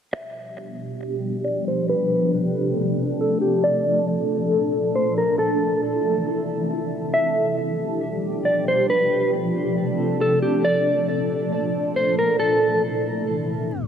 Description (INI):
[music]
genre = hip hop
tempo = 137 BPM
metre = 4/4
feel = half-time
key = unclear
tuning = A4 = 439 Hz
[part]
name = mellow electric guitar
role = melody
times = 0.1-12.8 s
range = G4 to E5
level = -22 LUFS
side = equal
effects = low-pass filter, tape echo
[part]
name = shimmering ambient pad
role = sustained chords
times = 0.7-13.9 s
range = Bb2 to A4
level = -22 LUFS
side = equal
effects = chorus, built-in reverb, phaser, low-pass filter
[sound]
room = moderate lush hall reverb, RT60 2.6 s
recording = tape stop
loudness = -19 LUFS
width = side -8 dB against mid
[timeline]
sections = 0.1-13.9 A section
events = filter sweep 0.1-13.9; tape stop 13.7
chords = 0.1 G7; 1.9 Dm7; 3.6 Bbmaj7; 5.4 Am; 7.1 G7; 8.9 Dm7; 10.6 Bbmaj7; 12.4 Am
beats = | 0.14 0.58 1.01 1.45 | 1.89 2.33 2.77 3.20 | 3.64 4.08 4.52 4.96 | 5.39 5.83 6.27 6.71 | 7.14 7.58 8.02 8.46 | 8.90 9.34 9.77 10.21 | 10.65 11.09 11.52 11.96 | 12.40 12.84 13.28 13.71